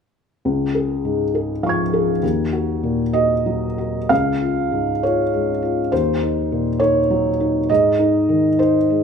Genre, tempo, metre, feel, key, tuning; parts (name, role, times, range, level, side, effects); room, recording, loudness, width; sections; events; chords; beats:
neoclassical minimalist piano; 67 BPM (dotted quarters); 6/8; rubato; A4 = 441 Hz
felt-muted upright piano; solo; 0.5-9.0 s; Db2 to Ab6; -16 LUFS; equal
moderate large studio reverb, RT60 0.9 s; band playing live in one room; -17 LUFS; side -6 dB against mid
0.4-4.1 A section; 4.1-9.0 B section
0.4 Db; 2.2 Ebm; 4.1 Db; 5.9 Ebm; 7.7 Ab
| 0.45 1.34 | 2.23 3.14 | 4.10 5.02 | 5.92 6.80 | 7.69 8.59